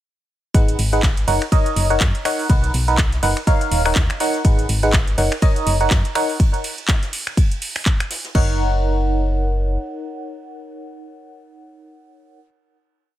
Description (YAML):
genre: piano house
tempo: 123 BPM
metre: 4/4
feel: swing 57% on 16ths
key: F# major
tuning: A4 = 441 Hz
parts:
  - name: barking FM electric piano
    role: riff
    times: 0.5-12.4 s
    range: D#4 to F#5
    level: -22 LUFS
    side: right 1 dB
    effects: chorus, phaser, tremolo, sidechain pumping, digital delay
  - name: solid FM bass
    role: bass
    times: 0.5-9.8 s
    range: D#1 to F#2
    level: -20 LUFS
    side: equal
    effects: sidechain pumping
  - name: electronic kick drum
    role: drums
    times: 0.5-8.5 s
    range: none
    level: -16 LUFS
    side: equal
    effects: none
  - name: house drum kit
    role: drums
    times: 0.5-8.5 s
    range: crash cymbal, finger snaps, handclaps, hi-hat, ride cymbal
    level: -24 LUFS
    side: right 1 dB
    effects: none
  - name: jazz brush drum kit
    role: drums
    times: 0.5-8.3 s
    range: ride cymbal, snare drum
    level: -36 LUFS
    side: right 2 dB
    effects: high-pass filter on cymbals, high-pass filter on snare, high-pass filter on room
room: little or no reverb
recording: none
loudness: -16 LUFS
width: side -13 dB against mid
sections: 0.5-8.3 drop; 8.3-12.3 final chord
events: drop 0.5-8.3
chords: 0.5 G#m7; 1.3 F#6; 2.5 Bmaj7; 3.5 D#m7; 4.4 G#m7; 5.2 F#6; 6.4 N.C.; 8.3 F#6